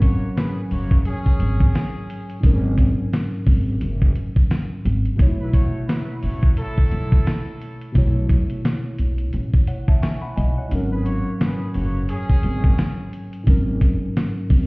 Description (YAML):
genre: hip hop, boom-bap hip-hop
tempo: 87 BPM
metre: 4/4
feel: swing 59% on 16ths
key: unclear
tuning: A4 = 439 Hz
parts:
  - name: tine electric piano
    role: accompaniment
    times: 0.0-14.7 s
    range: G#2 to C#6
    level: -26 LUFS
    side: equal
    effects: overdrive, fast stereo tremolo, high-pass filter, low-pass filter
  - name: clear trumpet section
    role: stabs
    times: 0.0-12.9 s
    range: F#3 to C#5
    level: -34 LUFS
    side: right 1 dB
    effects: high-pass filter, low-pass filter, digital delay
  - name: upright bass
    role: bass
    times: 0.0-14.7 s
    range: F#1 to B1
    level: -22 LUFS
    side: equal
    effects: none
  - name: dusty soul sampler-style drum kit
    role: drums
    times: 0.0-14.7 s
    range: hi-hat, kick drum, snare drum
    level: -17 LUFS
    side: equal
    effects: none
room: small room reverb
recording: heard muffled through a wall, stone room reverb, vinyl crackle, EQ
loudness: -18 LUFS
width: side -27 dB against mid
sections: 0.0-14.7 A section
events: break 10.7-12.1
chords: 0.0 G#9sus4; 5.2 B9sus4; 10.7 G#9sus4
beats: 0.37 1.06 1.75 | 2.44 3.12 3.81 4.50 | 5.19 5.88 6.57 7.26 | 7.95 8.64 9.33 10.02 | 10.71 11.40 12.09 12.78 | 13.47 14.16